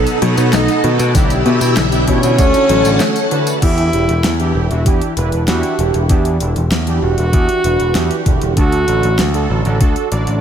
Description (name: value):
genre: synthwave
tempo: 97 BPM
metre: 4/4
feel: straight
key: E dorian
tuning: A4 = 436 Hz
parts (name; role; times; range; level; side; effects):
- string machine, full ensemble; sustained chords; 0.0-3.6 s; D#4 to B5; -19 LUFS; equal; phaser, ensemble chorus, sidechain pumping
- wide unison pluck; arpeggios; 0.0-3.6 s; D3 to D4; -21 LUFS; left 4 dB; ping-pong delay
- analog synth brass; stabs; 0.0-10.4 s; B2 to D5; -20 LUFS; right 4 dB; chorus, cassette tape, ping-pong delay
- modern bright picked electric bass; bass; 0.0-10.4 s; E1 to B2; -16 LUFS; equal; none
- pop drum kit; drums; 0.1-10.4 s; crash cymbal, handclaps, hi-hat, snare drum, tambourine; -22 LUFS; equal; small room ambience
- clear alto saxophone; melody; 0.5-9.4 s; C#4 to F#4; -19 LUFS; equal; ping-pong delay
- airy dreamy lead; second line; 0.5-3.5 s; C#5 to D#5; -22 LUFS; left 1 dB; chorus, cassette tape, ping-pong delay
- electronic kick drum; drums; 1.1-9.9 s; none; -15 LUFS; equal; overdrive, small room ambience
room: light reverb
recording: none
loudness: -12 LUFS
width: side -8 dB against mid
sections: 0.0-3.6 A section; 3.6-10.4 B section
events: break 3.0-3.6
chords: 0.0 B7; 1.1 Em7/B; 2.4 D; 3.6 Em7; 8.6 D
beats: 0.53 | 1.15 1.77 2.39 3.00 | 3.62 4.24 4.86 5.48 | 6.10 6.72 7.33 7.95 | 8.57 9.19 9.81